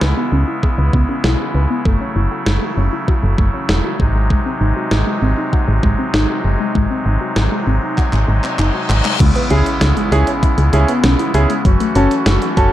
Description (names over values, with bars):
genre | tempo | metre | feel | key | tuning
synth-pop | 98 BPM | 4/4 | straight | C# minor | A4 = 442 Hz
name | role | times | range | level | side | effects
pipe organ, soft reed | sustained chords | 0.0-12.7 s | B#2 to F#4 | -21 LUFS | equal | none
warbly dusty pluck | arpeggios | 0.0-12.5 s | F#3 to B4 | -22 LUFS | left 2 dB | chorus, phaser, tape echo
solid FM bass | bass | 0.0-12.7 s | E1 to C#2 | -15 LUFS | equal | none
clean 12-bit digital drum machine | drums | 0.0-12.7 s | crash cymbal, handclaps, hi-hat, kick drum, snare drum | -19 LUFS | equal | none
reverse cymbal and impact | sound effects | 8.3-11.7 s | none | -25 LUFS | left 1 dB | none
clear baby grand piano | accompaniment | 9.5-12.7 s | C#4 to A4 | -18 LUFS | right 2 dB | none
room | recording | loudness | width
light reverb | dark, warm production | -13 LUFS | side -13 dB against mid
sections
0.0-9.2 A section; 9.2-12.7 B section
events
drum fill 8.0-9.2; reverse cymbal 8.3-9.2; impact 9.2-11.7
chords
0.0 C#m7; 1.9 F#m7; 4.0 G#7; 9.2 C#m7; 11.7 F#m7